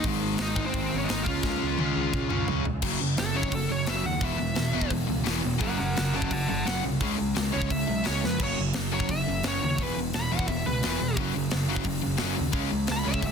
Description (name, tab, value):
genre	punk rock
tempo	173 BPM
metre	4/4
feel	straight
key	unclear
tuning	A4 = 440 Hz
part	bluesy overdriven lead guitar	melody	0.0-13.3 s	B#3 to B5	-31 LUFS	equal	distortion
part	biting overdriven guitar	riff	0.0-13.3 s	E2 to C#4	-31 LUFS	left 13 dB	none
part	sludgy distorted guitar	riff	0.0-13.3 s	E2 to C#4	-31 LUFS	right 11 dB	overdrive
part	fuzz picked electric bass	bass	0.0-13.3 s	E1 to E#2	-32 LUFS	equal	overdrive
part	tight metal drum kit	drums	0.0-13.3 s	crash cymbal, hi-hat, kick drum, snare drum, toms	-31 LUFS	left 1 dB	soft clipping on kick
room	light reverb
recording	dense, heavily limited modern master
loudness	-24 LUFS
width	side -6 dB against mid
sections	0.0-2.8 A section; 2.8-13.3 B section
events	drum fill 1.4-2.8, 8.2; lead electric guitar solo 2.8-13.3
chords	0.1 G#; 1.3 C#; 2.8 F#5; 4.2 E5; 5.6 F#; 7.0 C#5; 8.4 F#5; 9.8 E5; 11.2 F#5; 12.5 C#5